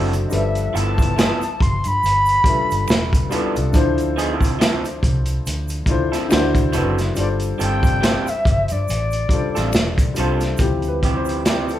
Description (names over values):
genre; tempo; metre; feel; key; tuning
R&B, neo-soul; 70 BPM; 4/4; swing 58% on 16ths; unclear; A4 = 440 Hz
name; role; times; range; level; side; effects
electric guitar through a small old amp; second line; 0.0-11.7 s; F3 to A4; -25 LUFS; right 4 dB; none
warm upright piano; accompaniment; 0.0-11.8 s; D3 to E5; -24 LUFS; left 2 dB; none
vintage muted fingered electric bass; bass; 0.0-11.8 s; E1 to G2; -23 LUFS; equal; none
crunchy breakbeat drum kit; drums; 0.1-11.8 s; hi-hat, kick drum, snare drum; -20 LUFS; equal; none
egg shaker and finger snaps; percussion; 0.1-11.8 s; none; -38 LUFS; right 2 dB; none
silver concert flute; melody; 0.3-10.2 s; D5 to C6; -21 LUFS; left 1 dB; none
room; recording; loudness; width
moderate large studio reverb, RT60 1.2 s; band playing live in one room; -16 LUFS; side -12 dB against mid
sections
0.0-10.6 A section; 10.6-11.8 B section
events
upright piano solo 10.6-11.8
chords
0.3 G13; 3.7 Dm9; 6.3 D9; 7.2 G9sus4; 10.6 Dm11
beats
| 0.31 1.17 2.02 2.88 | 3.74 4.59 5.45 6.31 | 7.17 8.02 8.88 9.74 | 10.59 11.45